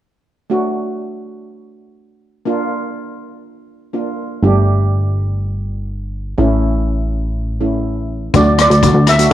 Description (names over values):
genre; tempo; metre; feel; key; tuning
calypso; 123 BPM; 4/4; straight; D major; A4 = 441 Hz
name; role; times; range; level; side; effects
steel pan; accompaniment; 0.5-9.3 s; A3 to G4; -20 LUFS; right 2 dB; none
plucky analog bass; bass; 4.4-9.3 s; G1 to D2; -15 LUFS; equal; none
street-band drum kit; drums; 8.3-9.3 s; hi-hat, kick drum, rim click; -15 LUFS; left 6 dB; none
steel pan; melody; 8.4-9.3 s; D5 to E5; -13 LUFS; right 2 dB; slapback echo
room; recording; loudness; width
moderate spring reverb, RT60 1.8 s; 1960s-style stereo; -14 LUFS; side -12 dB against mid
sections
0.5-8.3 A section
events
none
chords
0.5 D; 2.5 Bb; 4.4 Gsus2; 6.4 A; 8.3 D